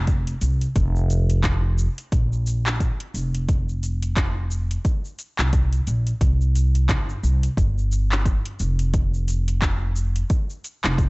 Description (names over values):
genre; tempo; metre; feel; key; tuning
organic downtempo; 88 BPM; 4/4; swing 58% on 16ths; unclear; A4 = 438 Hz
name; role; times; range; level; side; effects
upright bass; bass; 0.0-11.1 s; F1 to C2; -21 LUFS; equal; transformer saturation
deep house drum kit; drums; 0.1-11.1 s; handclaps, hi-hat, shaker; -28 LUFS; equal; overdrive
electronic kick drum; drums; 0.1-11.1 s; none; -22 LUFS; equal; overdrive
room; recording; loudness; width
little or no reverb; dry, gritty hardware recording, cassette tape, nothing above 8.0 kHz; -20 LUFS; side -26 dB against mid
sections
0.0-11.1 A section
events
none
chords
none